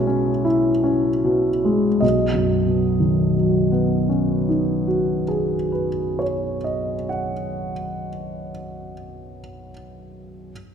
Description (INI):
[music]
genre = classical, impressionist solo piano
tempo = 24-30 BPM (dotted quarters)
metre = 9/8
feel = rubato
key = B major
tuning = A4 = 441 Hz
[part]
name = clear grand piano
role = solo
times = 0.0-10.5 s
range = B1 to F#5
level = -19 LUFS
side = equal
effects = none
[sound]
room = moderate concert hall reverb, RT60 1.9 s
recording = minimal, uncompressed stereo recording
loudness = -18 LUFS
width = side -7 dB against mid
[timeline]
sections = 0.0-2.0 A section; 2.0-8.3 B section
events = slowing down 0.0-2.0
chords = 0.0 C#m7/B; 2.0 B69